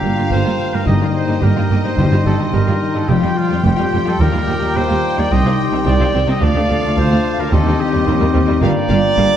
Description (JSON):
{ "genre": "cinematic", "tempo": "108 BPM", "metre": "4/4", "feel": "straight", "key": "unclear", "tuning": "A4 = 439 Hz", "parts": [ { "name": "rich studio violin section", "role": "melody", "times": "0.0-9.3 s", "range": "Eb5 to G5", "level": "-27 LUFS", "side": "left 3 dB", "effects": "none" }, { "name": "dark clarinet", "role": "second line", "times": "0.0-9.4 s", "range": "Eb4 to G4", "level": "-27 LUFS", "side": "left 2 dB", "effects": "none" }, { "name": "mellow concert flute", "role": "second line", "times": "0.0-9.4 s", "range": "Bb5 to D6", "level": "-29 LUFS", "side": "equal", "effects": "none" }, { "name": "warm oboe", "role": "second line", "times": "0.0-9.4 s", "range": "G5 to A5", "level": "-30 LUFS", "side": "equal", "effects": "none" }, { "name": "warm symphonic violin section", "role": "second line", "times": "0.0-9.2 s", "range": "G3 to G4", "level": "-29 LUFS", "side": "left 3 dB", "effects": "none" }, { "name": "rich symphonic viola section", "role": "accompaniment", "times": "0.0-9.3 s", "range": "G3 to C4", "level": "-26 LUFS", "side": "right 1 dB", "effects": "none" }, { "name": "mellow French horn section", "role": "sustained chords", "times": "0.0-9.4 s", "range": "G3 to F4", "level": "-23 LUFS", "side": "left 5 dB", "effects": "none" }, { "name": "concert harp", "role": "arpeggios", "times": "0.0-9.4 s", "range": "G2 to F4", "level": "-23 LUFS", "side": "left 7 dB", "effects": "none" }, { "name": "bright trumpet", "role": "stabs", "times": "0.0-9.4 s", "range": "F4 to Eb5", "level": "-22 LUFS", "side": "right 2 dB", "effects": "none" }, { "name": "clear studio cello section", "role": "bass", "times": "0.0-9.3 s", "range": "C2 to G2", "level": "-20 LUFS", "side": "right 2 dB", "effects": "none" }, { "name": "clear symphonic double bass section", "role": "bass", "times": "0.0-9.3 s", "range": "F1 to Eb2", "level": "-19 LUFS", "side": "right 3 dB", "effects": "none" }, { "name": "timpani", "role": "percussion", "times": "0.0-2.8 s", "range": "G2", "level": "-22 LUFS", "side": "left 2 dB", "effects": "none" } ], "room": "moderate scoring stage reverb, RT60 1.8 s", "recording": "dark, warm production", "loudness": "-13 LUFS", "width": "side -10 dB against mid", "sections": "0.0-9.4 A section", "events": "none", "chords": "0.0 Gm7; 0.9 Eb/G; 2.0 Cm/G; 3.1 Fsus2; 4.2 Eb; 5.3 Cm; 6.4 Dm; 7.5 Cm/Eb; 8.6 Gm7", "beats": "0.32 0.87 1.43 | 1.98 2.54 3.09 3.65 | 4.20 4.76 5.31 5.86 | 6.42 6.97 7.52 8.07 | 8.62 9.17" }